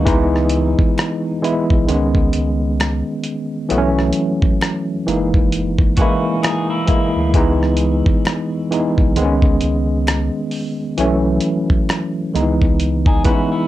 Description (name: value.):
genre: lo-fi hip hop.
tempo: 66 BPM.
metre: 4/4.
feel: swing 60% on 16ths.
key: C# minor.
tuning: A4 = 440 Hz.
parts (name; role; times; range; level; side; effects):
electric guitar through a small old amp; second line; 0.0, 6.0-7.3, 13.1-13.7 s; A#3 to G#4; -27 LUFS; left 1 dB; phaser, low-pass filter, tape echo.
tine electric piano; accompaniment; 0.0-13.7 s; D#3 to B4; -17 LUFS; equal; overdrive, medium stereo tremolo, cassette tape, low-pass filter.
warm sub bass; bass; 0.0-13.2 s; F#1 to D2; -20 LUFS; equal; none.
dusty soul sampler-style drum kit; drums; 0.1-13.5 s; hi-hat, kick drum, rim click; -17 LUFS; equal; none.
finger snaps; percussion; 1.0-12.1 s; none; -34 LUFS; left 2 dB; none.
room: moderate studio reverb, RT60 0.5 s.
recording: cassette tape.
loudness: -15 LUFS.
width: side -14 dB against mid.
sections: 0.0-13.7 A section.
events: none.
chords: 0.1 C#m9; 1.9 G#madd11/C#; 3.7 B7sus4; 5.1 F#13; 7.3 C#m9; 9.2 G#madd11/C#; 11.0 B7sus4; 12.3 C#m9.